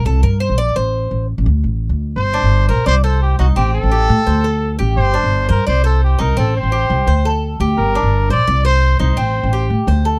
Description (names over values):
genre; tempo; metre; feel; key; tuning
latin, Cuban son and guajira; 171 BPM; 4/4; straight; G minor; A4 = 440 Hz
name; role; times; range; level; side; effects
Cuban tres; arpeggios; 0.0-10.2 s; C4 to D5; -24 LUFS; equal; none
upright bass; bass; 0.0-10.2 s; G1 to A2; -17 LUFS; equal; none
clear trumpet; melody; 2.2-9.7 s; F#4 to D5; -21 LUFS; equal; none
room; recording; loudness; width
little or no reverb; dry, close 1970s-style studio recording; -16 LUFS; mono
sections
0.0-2.2 A section; 2.2-10.2 B section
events
Cuban tres solo 0.0-2.2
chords
0.1 C5; 0.8 Am; 1.5 D5; 2.2 Gm; 2.9 Cmadd9; 3.6 Am7; 4.3 D5; 5.0 G5; 5.7 Cmadd9; 6.4 Am7; 7.1 D5; 7.8 Gm; 8.5 Cmadd9; 9.2 Am7